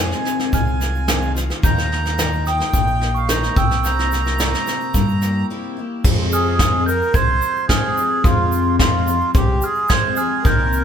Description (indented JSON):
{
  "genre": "indie folk with a building arrangement",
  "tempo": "109 BPM",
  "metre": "4/4",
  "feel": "straight",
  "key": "F minor",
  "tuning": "A4 = 440 Hz",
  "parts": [
    { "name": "accordion", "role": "melody", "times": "0.0-10.8 s", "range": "F4 to Bb5", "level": "-22 LUFS", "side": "right 2 dB", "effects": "none" },
    { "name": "picked twelve-string acoustic guitar", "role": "accompaniment", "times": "0.0-10.8 s", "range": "F2 to G4", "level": "-26 LUFS", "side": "left 5 dB", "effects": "none" },
    { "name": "picked electric bass", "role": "bass", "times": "0.0-10.8 s", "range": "Bb1 to G2", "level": "-21 LUFS", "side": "equal", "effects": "none" },
    { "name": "soft brush drum kit", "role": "drums", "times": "0.1-10.6 s", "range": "crash cymbal, kick drum, snare drum", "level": "-19 LUFS", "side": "equal", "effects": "none" },
    { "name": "egg shaker", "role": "percussion", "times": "0.1-10.8 s", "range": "none", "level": "-33 LUFS", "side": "right 5 dB", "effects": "none" },
    { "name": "glockenspiel with rubber mallets", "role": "second line", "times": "0.5-10.8 s", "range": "C6 to Ab6", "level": "-25 LUFS", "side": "right 4 dB", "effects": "none" }
  ],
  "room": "moderate stone room reverb, RT60 1.4 s",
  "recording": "band playing live in one room",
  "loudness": "-16 LUFS",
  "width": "side -8 dB against mid",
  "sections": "0.0-6.0 A section; 6.0-10.8 B section",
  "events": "break 5.5-6.0",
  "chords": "0.0 Fm7; 1.6 Ebadd9; 3.6 C7; 6.0 Fmadd9",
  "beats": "0.53 1.08 | 1.64 2.19 2.74 3.29 | 3.84 4.39 4.94 5.49 | 6.04 6.60 7.15 7.70 | 8.25 8.80 9.35 9.90 | 10.45"
}